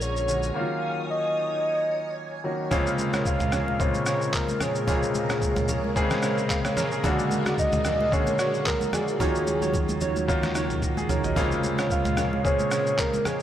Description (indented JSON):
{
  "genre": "amapiano",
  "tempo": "111 BPM",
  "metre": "4/4",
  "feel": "swing 55% on 16ths",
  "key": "Bb minor",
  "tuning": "A4 = 440 Hz",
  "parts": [
    { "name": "soft octave-layered synth lead", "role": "melody", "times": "0.0-13.4 s", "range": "Ab4 to F5", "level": "-27 LUFS", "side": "equal", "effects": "chorus, low-pass filter, tape echo" },
    { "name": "clear concert grand piano", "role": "accompaniment", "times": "0.0-13.4 s", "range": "C3 to F5", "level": "-27 LUFS", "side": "left 1 dB", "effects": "low-pass filter" },
    { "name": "phased string machine", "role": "sustained chords", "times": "0.0-13.4 s", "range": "Eb2 to Eb6", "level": "-33 LUFS", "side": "right 1 dB", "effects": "ensemble chorus, phaser, sidechain pumping, low-pass filter" },
    { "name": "fat analog bass", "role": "bass", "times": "0.0-0.5 s", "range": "Bb1", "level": "-29 LUFS", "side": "equal", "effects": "none" },
    { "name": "trip hop sampler-style drum kit", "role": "drums", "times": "0.0-13.4 s", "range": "handclaps, kick drum, rim click, shaker, snare drum, toms", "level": "-28 LUFS", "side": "equal", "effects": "none" },
    { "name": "glassy wavetable pluck", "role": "stabs", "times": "2.7-13.4 s", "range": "Eb4 to D5", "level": "-31 LUFS", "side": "right 3 dB", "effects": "chorus, tape echo" },
    { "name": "congas", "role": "percussion", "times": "2.7-13.4 s", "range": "none", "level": "-35 LUFS", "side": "equal", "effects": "none" }
  ],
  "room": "light reverb",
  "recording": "dry, gritty hardware recording",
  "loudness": "-22 LUFS",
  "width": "side -11 dB against mid",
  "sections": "0.0-2.7 A section; 2.7-13.4 B section",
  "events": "filter sweep 0.0-2.7; drum fill 10.8-11.4",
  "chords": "0.0 Bb7alt; 0.6 Ebm7; 2.7 Bbm7; 7.0 Bb7alt; 9.2 Ebm7; 11.4 Bbm7"
}